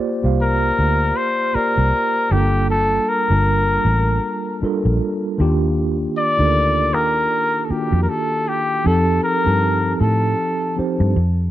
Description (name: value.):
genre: R&B, neo-soul.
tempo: 78 BPM.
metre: 4/4.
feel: swing 57% on 16ths.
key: unclear.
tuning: A4 = 439 Hz.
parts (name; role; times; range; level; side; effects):
mellow tine electric piano; accompaniment; 0.0-11.2 s; Eb3 to A5; -22 LUFS; right 2 dB; medium stereo tremolo.
vintage muted fingered electric bass; bass; 0.2-11.5 s; G1 to A2; -18 LUFS; equal; none.
clear flugelhorn; melody; 0.4-10.8 s; G4 to D5; -19 LUFS; left 1 dB; slapback echo.
room: little or no reverb.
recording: none.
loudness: -16 LUFS.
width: side -14 dB against mid.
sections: 0.0-11.5 A section.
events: none.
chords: 0.0 Bb69; 2.3 Gm7; 5.4 Ebmaj7; 8.8 F7.